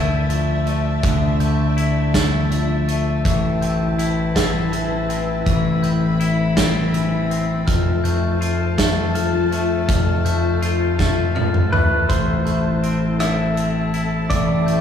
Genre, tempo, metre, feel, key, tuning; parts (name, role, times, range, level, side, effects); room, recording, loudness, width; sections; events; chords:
post-rock; 54 BPM (dotted quarters); 6/8; straight; A minor; A4 = 440 Hz
clear studio string section; sustained chords; 0.0-14.8 s; C4 to B5; -28 LUFS; left 2 dB
glockenspiel with brass mallets; arpeggios; 0.0-14.8 s; E6 to A6; -31 LUFS; right 1 dB
twangy electric guitar; arpeggios; 0.0-14.8 s; F2 to F4; -24 LUFS; left 3 dB
growling picked electric bass; bass; 0.0-14.8 s; F1 to D2; -20 LUFS; left 1 dB; overdrive
huge arena drum kit; drums; 0.3-14.8 s; hi-hat, kick drum, rim click, snare drum, toms; -22 LUFS; right 1 dB
clean lap steel guitar; melody; 11.7-14.8 s; B4 to E5; -23 LUFS; equal
wet church reverb, RT60 3.3 s; recorded in a church or concert hall, studio reverb; -17 LUFS; side -8 dB against mid
0.0-12.1 A section; 12.1-14.8 B section
drum fill 11.0-12.1
0.0 Dmadd9; 3.2 Amadd9; 7.7 F; 12.1 Am